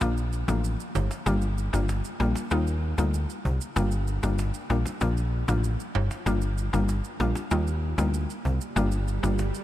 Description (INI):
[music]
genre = dancehall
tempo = 96 BPM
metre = 4/4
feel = straight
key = G minor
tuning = A4 = 441 Hz
[part]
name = mallet-like synth pluck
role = accompaniment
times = 0.0-9.4 s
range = F3 to F4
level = -29 LUFS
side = left 2 dB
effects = chorus
[part]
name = plucky analog bass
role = bass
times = 0.0-9.5 s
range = G1 to Eb2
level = -26 LUFS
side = equal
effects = none
[part]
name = cajon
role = drums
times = 0.0-9.6 s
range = none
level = -37 LUFS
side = equal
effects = none
[part]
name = maracas and timbales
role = percussion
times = 0.0-9.6 s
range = none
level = -39 LUFS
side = right 10 dB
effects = none
[part]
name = swell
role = sound effects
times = 8.5-9.6 s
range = none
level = -38 LUFS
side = right 6 dB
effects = none
[sound]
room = light reverb, small room ambience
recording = none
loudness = -24 LUFS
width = side -14 dB against mid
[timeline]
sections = 0.0-9.6 A section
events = swell 8.5-9.6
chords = 0.0 Bb; 1.3 Gm7; 2.5 Ebadd9; 3.8 Gm7; 5.0 Bb; 6.3 Gm7; 7.5 Ebadd9; 8.8 Gm7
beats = 0.01 0.64 | 1.26 1.89 2.51 3.14 | 3.76 4.39 5.01 5.64 | 6.26 6.89 7.51 8.14 | 8.76 9.39